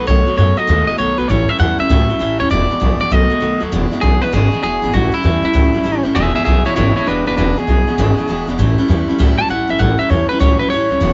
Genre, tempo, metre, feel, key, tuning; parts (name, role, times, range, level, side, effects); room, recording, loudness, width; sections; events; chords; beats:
rock; 198 BPM; 4/4; swing 65% on 8ths; E mixolydian; A4 = 440 Hz
electric guitar at the edge of break-up; melody; 0.0-11.1 s; D4 to A5; -20 LUFS; equal
picked steel-string acoustic guitar; accompaniment; 0.0-11.1 s; E2 to F#4; -23 LUFS; equal
electric guitar through a small old amp; riff; 0.0-11.1 s; E2 to G#3; -24 LUFS; equal
upright bass; bass; 0.0-11.1 s; E1 to F#2; -18 LUFS; equal
light reverb; band playing live in one room, nothing above 7.7 kHz; -15 LUFS; mono
0.0-3.7 A section; 3.7-11.1 B section
clean electric guitar solo 3.7-11.1
0.0 B7; 1.3 A7; 2.5 E7; 3.1 B7; 3.7 E7; 4.9 A7; 6.2 E7; 8.6 A7
| 0.08 0.38 0.69 0.99 | 1.29 1.60 1.90 2.21 | 2.51 2.81 3.12 3.42 | 3.72 4.03 4.33 4.63 | 4.94 5.24 5.55 5.85 | 6.16 6.46 6.76 7.07 | 7.37 7.67 7.98 8.28 | 8.59 8.89 9.19 9.49 | 9.80 10.10 10.40 10.71 | 11.01